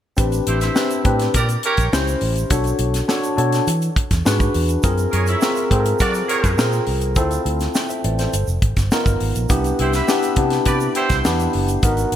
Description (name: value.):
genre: polished 1980s jazz-funk pop.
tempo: 103 BPM.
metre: 4/4.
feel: straight.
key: unclear.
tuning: A4 = 440 Hz.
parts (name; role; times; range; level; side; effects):
mellow tine electric piano; accompaniment; 0.2-12.2 s; B3 to G5; -21 LUFS; left 2 dB; lush chorus.
fingered electric bass with an envelope filter; bass; 0.2-12.2 s; F1 to F#3; -21 LUFS; equal; none.
tight funk drum kit; drums; 0.2-12.2 s; hi-hat, kick drum, snare drum; -21 LUFS; equal; none.
tube shaker; percussion; 0.2-12.1 s; none; -34 LUFS; right 8 dB; none.
mellow horn section; second line; 0.5-11.2 s; E4 to E5; -23 LUFS; right 3 dB; none.
room: moderate plate reverb, RT60 2.0 s.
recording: bright 1980s-style digital production.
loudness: -16 LUFS.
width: side -10 dB against mid.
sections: 0.2-12.2 A section.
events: none.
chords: 0.2 Am11; 1.3 A#dim7; 2.5 Bm7; 3.7 E9; 4.8 F#maj9#11; 7.2 Dm7; 8.3 G7alt; 9.5 Cmaj9.